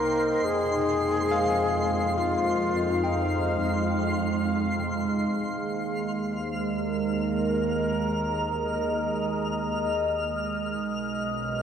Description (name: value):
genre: ambient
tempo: 70 BPM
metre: 3/4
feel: straight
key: Eb major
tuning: A4 = 440 Hz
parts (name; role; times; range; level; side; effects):
- breathy bright wooden-headed alto flute; melody; 0.0-3.9 s; Eb4 to Bb4; -28 LUFS; left 2 dB; ping-pong delay
- evolving wavetable pad; sustained chords; 0.0-11.6 s; F#3 to G5; -27 LUFS; right 1 dB; phaser, built-in reverb
- bright tine electric piano; arpeggios; 0.0-5.7 s; F5 to G5; -33 LUFS; left 2 dB; overdrive, fast stereo tremolo, ping-pong delay
- rich studio double bass section; bass; 0.0-11.6 s; B1 to F2; -33 LUFS; equal; none
- twinkling granular texture; texture; 0.0-11.6 s; C6 to F6; -35 LUFS; left 1 dB; built-in reverb
room: wet concert hall reverb, RT60 2.2 s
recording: worn, warbling old tape, cassette tape, warbly pitch drift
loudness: -24 LUFS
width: side -8 dB against mid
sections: 0.0-5.6 A section; 5.6-11.6 B section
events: none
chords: 0.5 Fm7; 5.6 Ebsus4; 10.8 Badd9